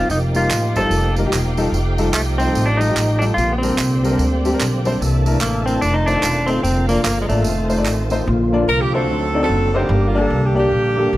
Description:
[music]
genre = uptempo gospel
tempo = 147 BPM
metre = 4/4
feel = swing 61% on 8ths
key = Bb major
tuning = A4 = 437 Hz
[part]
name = clean lap steel guitar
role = melody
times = 0.0-8.1 s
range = Ab3 to A4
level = -20 LUFS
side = equal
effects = none
[part]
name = warm concert grand piano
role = accompaniment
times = 0.0-11.1 s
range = G2 to D5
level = -22 LUFS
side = left 2 dB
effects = none
[part]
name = tonewheel organ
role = sustained chords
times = 0.0-11.2 s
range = C3 to A4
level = -26 LUFS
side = right 1 dB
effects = slow rotary speaker, overdrive, chorus vibrato
[part]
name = warm studio string section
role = sustained chords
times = 0.0-8.3 s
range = Bb3 to Bb5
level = -31 LUFS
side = equal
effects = none
[part]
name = upright bass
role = bass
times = 0.0-11.2 s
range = E1 to D2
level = -20 LUFS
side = equal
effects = none
[part]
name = tambourine and handclaps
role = percussion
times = 0.1-8.2 s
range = none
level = -27 LUFS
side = right 4 dB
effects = none
[part]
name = warm saxophone section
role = melody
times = 8.7-11.2 s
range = Bb3 to Bb4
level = -18 LUFS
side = right 1 dB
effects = slapback echo
[sound]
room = light reverb, studio reverb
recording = none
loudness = -15 LUFS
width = side -16 dB against mid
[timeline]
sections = 0.0-8.3 A section; 8.3-11.2 B section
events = none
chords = 0.0 F9sus4; 1.7 F9; 3.4 Bb69; 5.0 C13; 5.8 F7; 6.6 Bb/F; 7.5 F7; 8.3 Bb; 9.1 D7b9; 9.9 Gm

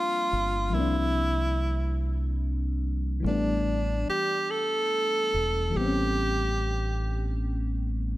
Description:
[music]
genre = slow six-eight R&B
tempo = 48 BPM (dotted quarters)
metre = 6/8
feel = straight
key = unclear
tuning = A4 = 439 Hz
[part]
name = clear tenor saxophone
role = melody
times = 0.0-7.4 s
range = D4 to A4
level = -28 LUFS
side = right 1 dB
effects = none
[part]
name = mellow FM electric piano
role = accompaniment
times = 0.0-8.2 s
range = E3 to D4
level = -32 LUFS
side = left 2 dB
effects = chorus
[part]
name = deep dub fingered electric bass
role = bass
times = 0.3-8.2 s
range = E1 to C2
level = -28 LUFS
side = equal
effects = none
[sound]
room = light reverb, small room ambience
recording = none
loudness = -25 LUFS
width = side -17 dB against mid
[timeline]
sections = 0.0-8.2 A section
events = none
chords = 0.0 C9sus4; 3.2 A9sus4

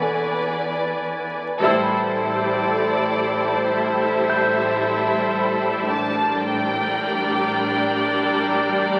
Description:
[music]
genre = cinematic, suspense film score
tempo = 56 BPM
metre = 4/4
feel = straight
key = A phrygian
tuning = A4 = 438 Hz
[part]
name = warm studio violin section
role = melody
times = 0.0-9.0 s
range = D5 to A5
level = -29 LUFS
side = equal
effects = none
[part]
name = rich studio violin section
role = second line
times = 0.0-9.0 s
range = A4 to D5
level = -27 LUFS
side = equal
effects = none
[part]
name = soft additive organ-like pad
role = sustained chords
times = 0.0-9.0 s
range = A4 to G#5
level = -29 LUFS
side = equal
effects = ensemble chorus, built-in reverb
[part]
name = rich studio cello section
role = bass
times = 0.0-9.0 s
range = E2 to A2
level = -34 LUFS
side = equal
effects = none
[part]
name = rich studio double bass section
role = bass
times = 0.0-9.0 s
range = E1 to A1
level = -40 LUFS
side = equal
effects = none
[part]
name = warm concert grand piano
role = texture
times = 0.0-9.0 s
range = A4 to G6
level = -31 LUFS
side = equal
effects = none
[part]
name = rich studio viola section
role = accompaniment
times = 1.6-9.0 s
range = G3 to E4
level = -26 LUFS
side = equal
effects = none
[sound]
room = wet scoring stage reverb, RT60 1.9 s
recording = very old 78 rpm record, vinyl crackle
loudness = -21 LUFS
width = mono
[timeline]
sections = 0.0-1.6 A section; 1.6-9.0 B section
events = band accent 1.6-2.7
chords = 0.0 E7; 1.6 Am7; 5.9 Gmadd9/A

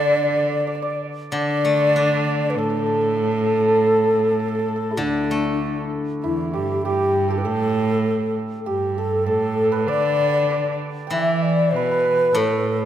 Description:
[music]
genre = chinese traditional, Chinese chamber ensemble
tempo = 98 BPM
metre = 2/4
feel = rubato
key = D zhi mode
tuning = A4 = 440 Hz
[part]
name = mellow hollow xiao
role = melody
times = 0.0-12.9 s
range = D4 to E5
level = -22 LUFS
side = equal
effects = none
[part]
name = clear cello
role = second line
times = 0.0-12.9 s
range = D2 to E3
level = -24 LUFS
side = right 3 dB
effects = none
[part]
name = hammered dulcimer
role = second line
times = 0.0-12.9 s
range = D4 to G5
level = -28 LUFS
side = right 3 dB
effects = none
[part]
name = mellow xiao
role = second line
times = 0.0-12.9 s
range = D4 to E5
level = -26 LUFS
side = left 5 dB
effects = none
[part]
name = steel-string zither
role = accompaniment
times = 0.0-6.8, 11.1-12.9 s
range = A2 to D4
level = -27 LUFS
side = left 3 dB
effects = none
[sound]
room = moderate concert hall reverb, RT60 2.3 s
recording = none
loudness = -18 LUFS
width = side -10 dB against mid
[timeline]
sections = 0.0-6.2 A section; 6.2-12.9 B section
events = none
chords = none

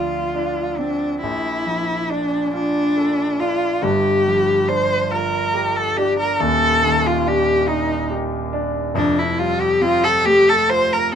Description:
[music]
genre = classical, impressionist duo for cello and grand piano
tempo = 46 BPM (dotted quarters)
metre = 6/8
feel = rubato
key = unclear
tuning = A4 = 439 Hz
[part]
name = dark cello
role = melody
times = 0.0-11.2 s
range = D4 to C5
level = -17 LUFS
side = equal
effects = none
[part]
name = warm concert grand piano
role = accompaniment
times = 0.0-11.2 s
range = Eb1 to A4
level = -22 LUFS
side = equal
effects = none
[sound]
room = moderate small room reverb, RT60 0.6 s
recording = dark, warm production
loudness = -16 LUFS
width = side -8 dB against mid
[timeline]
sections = 0.0-11.2 A section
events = none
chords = 0.0 Dm7; 1.2 Bbmaj7#11; 3.8 G5; 6.4 Ebmaj7; 9.0 Fadd9

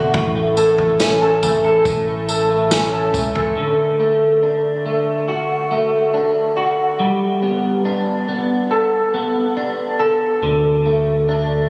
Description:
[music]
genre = dream pop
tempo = 70 BPM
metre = 4/4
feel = straight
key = D major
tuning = A4 = 441 Hz
[part]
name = electric guitar at the edge of break-up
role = arpeggios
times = 0.0-11.7 s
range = A2 to A4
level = -18 LUFS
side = equal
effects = ensemble chorus, tape echo
[part]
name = round analog bass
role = bass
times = 0.0-3.5, 10.4-11.7 s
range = G1 to D2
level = -30 LUFS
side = equal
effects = none
[part]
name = vintage drum kit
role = drums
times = 0.1-3.6 s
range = kick drum, snare drum, tambourine, toms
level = -25 LUFS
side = equal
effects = none
[sound]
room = moderate concert hall reverb, RT60 2.0 s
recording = recorded on a phone in the room, studio reverb, compression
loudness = -18 LUFS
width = mono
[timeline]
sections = 0.0-3.6 A section; 3.6-11.7 B section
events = none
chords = 0.1 A; 7.0 Gadd9; 10.4 D5

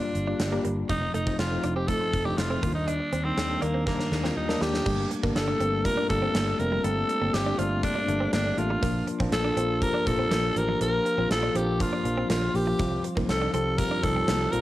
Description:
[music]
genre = 1980s-style pop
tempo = 121 BPM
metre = 4/4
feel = straight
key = unclear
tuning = A4 = 441 Hz
[part]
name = raspy alto saxophone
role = melody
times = 0.0-14.6 s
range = Bb3 to Bb4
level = -28 LUFS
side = equal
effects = cassette tape
[part]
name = mellow tine electric piano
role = accompaniment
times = 0.0-14.6 s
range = Eb3 to G4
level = -29 LUFS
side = left 2 dB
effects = medium stereo tremolo, cassette tape
[part]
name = direct-recorded clean electric guitar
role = riff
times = 0.0-14.4 s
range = F3 to Eb4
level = -35 LUFS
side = right 4 dB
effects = analog chorus, cassette tape
[part]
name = gated 80s drum kit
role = drums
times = 0.1-14.6 s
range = crash cymbal, hi-hat, kick drum, snare drum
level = -31 LUFS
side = equal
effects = cassette tape
[part]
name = fretless electric bass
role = bass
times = 0.2-14.6 s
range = F1 to Eb2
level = -30 LUFS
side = equal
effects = none
[sound]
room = moderate spring reverb, RT60 1.5 s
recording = home recording on cassette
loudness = -24 LUFS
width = side -15 dB against mid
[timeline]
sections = 0.0-4.9 A section; 4.9-14.6 B section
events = drum fill 3.9-4.9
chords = 0.0 Gm7; 0.9 F7; 2.6 Ebmaj7; 4.9 Gmadd9; 8.8 Bb; 12.8 Fsus2

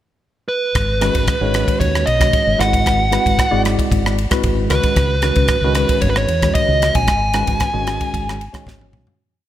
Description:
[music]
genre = electric jazz fusion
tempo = 114 BPM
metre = 4/4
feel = straight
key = G# minor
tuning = A4 = 439 Hz
[part]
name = dark smooth lead guitar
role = melody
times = 0.5-8.6 s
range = B4 to G#5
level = -19 LUFS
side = right 2 dB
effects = overdrive
[part]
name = fingered electric bass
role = bass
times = 0.7-9.1 s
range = G#1 to E2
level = -20 LUFS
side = equal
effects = none
[part]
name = crisp fusion drum kit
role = drums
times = 0.8-9.2 s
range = kick drum, ride cymbal, rim click, snare drum, toms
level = -20 LUFS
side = equal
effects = none
[part]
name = tine electric piano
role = accompaniment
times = 1.0-9.2 s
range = D#3 to D5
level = -22 LUFS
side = left 1 dB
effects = overdrive, medium stereo tremolo, wide subtle chorus
[sound]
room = light reverb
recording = bright 1980s-style digital production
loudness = -14 LUFS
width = side -12 dB against mid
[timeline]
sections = 0.0-0.8 pickup bar; 0.8-9.2 A section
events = fade-out 7.1-9.2; drum fill 8.7-9.2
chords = 0.0 N.C.; 0.8 G#m7; 2.6 G#7alt; 4.7 C#7sus2; 7.1 G#m7

